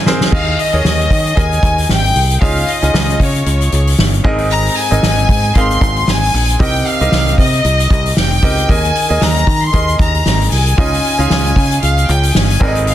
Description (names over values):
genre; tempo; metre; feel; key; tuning
piano-driven pop; 115 BPM; 4/4; swing 56% on 16ths; unclear; A4 = 439 Hz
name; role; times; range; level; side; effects
clear chamber violin section; melody; 0.0-12.9 s; Db5 to C6; -17 LUFS; left 2 dB; none
bright concert grand piano; accompaniment; 0.0-12.9 s; Ab2 to F5; -19 LUFS; right 2 dB; none
soft-mallet drum kit; drums; 0.1-12.9 s; crash cymbal, hi-hat, kick drum, snare drum; -16 LUFS; equal; none
fingered electric bass; bass; 0.3-12.9 s; F1 to Eb3; -15 LUFS; equal; none
room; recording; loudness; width
studio reverb; dense, heavily limited modern master; -11 LUFS; side -12 dB against mid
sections
0.3-12.9 A section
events
break 0.0-0.3; drum fill 0.0-0.3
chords
0.3 Ebsus4; 2.4 Dbadd9; 4.2 Abadd9; 6.6 Cm7; 8.7 Ebsus4; 10.8 Dbadd9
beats
| 0.33 0.85 1.37 1.89 | 2.42 2.94 3.46 3.99 | 4.51 5.03 5.55 6.08 | 6.60 7.12 7.65 8.17 | 8.69 9.21 9.74 10.26 | 10.78 11.30 11.83 12.35 | 12.87